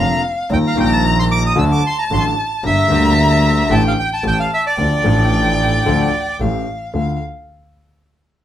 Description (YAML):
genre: tango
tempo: 112 BPM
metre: 4/4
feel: rubato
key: D minor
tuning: A4 = 438 Hz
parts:
  - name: bandoneon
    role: melody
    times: 0.0-6.4 s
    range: D5 to E6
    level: -19 LUFS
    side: right 1 dB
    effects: none
  - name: dark violin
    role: second line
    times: 0.0-7.2 s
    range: F5 to Bb5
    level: -21 LUFS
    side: left 1 dB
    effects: none
  - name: warm concert grand piano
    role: accompaniment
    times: 0.0-7.2 s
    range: F1 to A4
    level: -18 LUFS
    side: left 2 dB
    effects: none
  - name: clear double bass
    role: bass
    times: 0.0-7.2 s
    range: F1 to Eb2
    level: -18 LUFS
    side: right 1 dB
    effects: none
room: light reverb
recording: band playing live in one room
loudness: -13 LUFS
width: side -11 dB against mid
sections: 0.0-6.9 A section; 6.9-8.4 B section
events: none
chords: 0.0 Bb; 0.5 Ebadd9; 1.6 D; 2.6 Gm; 3.7 A7sus4; 4.2 A7; 4.8 Dm; 6.4 A7; 6.9 Dm